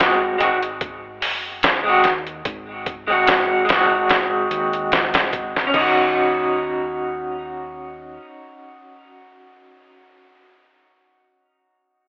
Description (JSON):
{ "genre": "trip hop", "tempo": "73 BPM", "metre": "4/4", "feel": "swing 54% on 16ths", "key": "Eb dorian", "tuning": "A4 = 440 Hz", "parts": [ { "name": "electric guitar at the edge of break-up", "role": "accompaniment", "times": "0.0-10.5 s", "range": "Ab3 to Gb4", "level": "-18 LUFS", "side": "equal", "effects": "tremolo, tape echo" }, { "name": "deep dub fingered electric bass", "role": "bass", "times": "0.0-8.2 s", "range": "Gb1 to Eb2", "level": "-38 LUFS", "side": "equal", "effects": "none" }, { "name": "trip hop sampler-style drum kit", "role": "drums", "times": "0.0-5.9 s", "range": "crash cymbal, hi-hat, kick drum, snare drum", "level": "-20 LUFS", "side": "equal", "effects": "none" } ], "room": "light reverb", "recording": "telephone sound", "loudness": "-16 LUFS", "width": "side -30 dB against mid", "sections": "0.0-5.7 A section; 5.7-9.0 B section", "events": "none", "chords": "0.0 Ab7; 5.7 Ebm7", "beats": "0.81 1.63 | 2.45 3.27 4.10 4.92 | 5.74 6.56 7.38 8.21" }